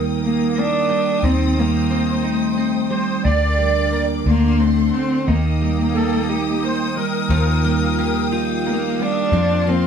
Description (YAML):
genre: six-eight pop ballad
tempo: 59 BPM (dotted quarters)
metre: 6/8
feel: straight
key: unclear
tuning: A4 = 443 Hz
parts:
  - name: twelve-string electric guitar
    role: accompaniment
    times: 0.0-9.9 s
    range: F2 to F4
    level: -22 LUFS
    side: right 5 dB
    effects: spring reverb
  - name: rich studio string section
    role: sustained chords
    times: 0.0-9.9 s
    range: Bb3 to Eb6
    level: -28 LUFS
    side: left 2 dB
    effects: none
  - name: vintage muted fingered electric bass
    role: bass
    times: 0.0-9.9 s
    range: D2 to F2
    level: -21 LUFS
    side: left 1 dB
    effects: none
  - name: dark cello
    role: melody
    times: 0.2-9.9 s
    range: A3 to D4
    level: -20 LUFS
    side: left 2 dB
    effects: none
  - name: musette accordion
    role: second line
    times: 2.9-8.3 s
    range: G4 to D5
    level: -23 LUFS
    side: right 2 dB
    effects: none
  - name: picked steel-string acoustic guitar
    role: arpeggios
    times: 7.3-9.9 s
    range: F3 to G4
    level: -27 LUFS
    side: equal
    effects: none
room: moderate studio ambience, RT60 0.5 s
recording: band playing live in one room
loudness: -16 LUFS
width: side -7 dB against mid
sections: 0.0-9.9 A section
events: none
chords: 0.0 Eb; 1.2 Cm/Eb; 3.3 Gm/D; 4.3 D7; 5.3 Eb; 7.3 Ebadd9; 9.3 Fsus4